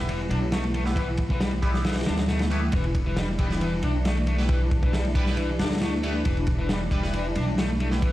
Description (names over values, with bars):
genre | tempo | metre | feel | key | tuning
breakbeat, breaks | 136 BPM | 4/4 | straight | E minor | A4 = 445 Hz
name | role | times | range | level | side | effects
phased analog pad | sustained chords | 0.0-8.1 s | E3 to D4 | -32 LUFS | equal | phaser, chorus, sidechain pumping
band-passed chord stab | stabs | 0.0-8.1 s | B3 to B4 | -36 LUFS | right 1 dB | phaser, lush chorus, cassette tape, ping-pong delay
upright bass | bass | 0.0-8.1 s | E1 to D2 | -27 LUFS | equal | none
thick fuzz guitar | riff | 0.1-8.1 s | E3 to D4 | -30 LUFS | left 1 dB | distortion, ping-pong delay
crunchy breakbeat drum kit | drums | 0.1-8.1 s | kick drum, ride cymbal, snare drum | -27 LUFS | equal | none
room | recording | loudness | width
light reverb | played on a big sound system in a bare room, stone room reverb, vinyl crackle | -22 LUFS | side -15 dB against mid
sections
0.0-8.1 A section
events
none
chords
0.0 Em